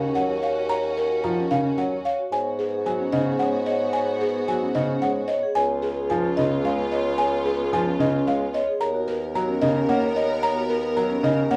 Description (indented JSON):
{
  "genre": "classical, minimalist pattern music",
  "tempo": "111 BPM",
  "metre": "3/4",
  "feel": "straight",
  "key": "G# dorian",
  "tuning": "A4 = 440 Hz",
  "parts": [
    { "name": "buzzing marimba with soft mallets", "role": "melody", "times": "0.0-11.6 s", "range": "G#4 to A#5", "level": "-29 LUFS", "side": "equal", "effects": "none" },
    { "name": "warm concert grand piano", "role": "accompaniment", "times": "0.0-11.6 s", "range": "C#3 to A#3", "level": "-29 LUFS", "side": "equal", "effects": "none" },
    { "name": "clear symphonic string section", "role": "sustained chords", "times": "0.0-11.6 s", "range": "B3 to A#4", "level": "-35 LUFS", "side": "equal", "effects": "none" },
    { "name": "vibraphone with medium mallets", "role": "arpeggios", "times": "0.0-11.6 s", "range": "C#4 to C#5", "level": "-29 LUFS", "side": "equal", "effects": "none" },
    { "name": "mellow bassoon", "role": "bass", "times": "0.0-11.6 s", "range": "C#2 to G#2", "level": "-29 LUFS", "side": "equal", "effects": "none" }
  ],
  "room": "moderate large studio reverb, RT60 0.9 s",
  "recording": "none",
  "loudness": "-23 LUFS",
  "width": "mono",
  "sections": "0.0-11.6 A section",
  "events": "none",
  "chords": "0.0 D#m7; 2.3 G#m7; 5.6 C#7; 8.8 Bmaj7/D#",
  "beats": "0.16 | 0.70 1.24 1.78 | 2.32 2.86 3.40 | 3.94 4.48 5.02 | 5.56 6.10 6.64 | 7.18 7.72 8.26 | 8.80 9.35 9.88 | 10.43 10.97 11.51"
}